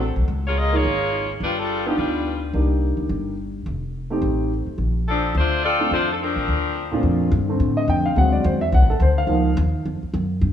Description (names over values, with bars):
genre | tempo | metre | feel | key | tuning
jazz, big band swing | 213 BPM | 4/4 | swing 59% on 8ths | Bb major | A4 = 440 Hz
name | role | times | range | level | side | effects
bright saxophone section | melody | 0.0-2.4, 5.1-6.9 s | F3 to Eb5 | -22 LUFS | left 2 dB | none
upright bass | bass | 0.0-10.5 s | F1 to A2 | -22 LUFS | equal | none
warm concert grand piano | accompaniment | 0.7-9.5 s | Bb2 to G5 | -23 LUFS | equal | none
room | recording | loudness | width
moderate concert hall reverb, RT60 1.9 s | none | -19 LUFS | side -9 dB against mid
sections
0.0-7.0 A section; 7.0-10.5 B section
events
grand piano solo 7.0-10.5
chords
0.3 Db6; 1.4 G7b13; 2.5 Cm7; 3.7 F9; 4.8 Bbmaj9; 8.2 D7#11; 9.3 Db69